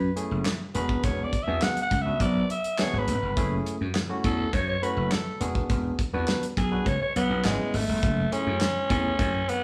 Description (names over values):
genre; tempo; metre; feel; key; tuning
early-eighties boogie funk; 103 BPM; 4/4; straight; F# minor; A4 = 439 Hz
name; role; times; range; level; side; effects
raspy alto saxophone; melody; 0.0-9.6 s; G#3 to F#5; -31 LUFS; equal; none
slap bass; bass; 0.0-9.4 s; E1 to F#2; -31 LUFS; equal; none
barky tine electric piano; accompaniment; 0.2-9.3 s; A3 to B4; -35 LUFS; equal; none
damped 70s drum kit; drums; 0.2-9.6 s; handclaps, hi-hat, kick drum, snare drum; -32 LUFS; equal; none
room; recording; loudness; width
wet stone room reverb, RT60 1.1 s; band playing live in one room, studio reverb; -26 LUFS; mono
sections
0.0-8.0 A section; 8.0-9.6 B section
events
alto saxophone solo 0.0-8.0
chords
0.0 F#m7; 0.7 E7; 3.4 F#m7; 5.4 E7; 6.9 C#m7; 8.0 F#m7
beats
0.46 | 1.04 1.62 2.20 2.79 | 3.37 3.95 4.53 5.12 | 5.70 6.28 6.86 7.45 | 8.03 8.61 9.19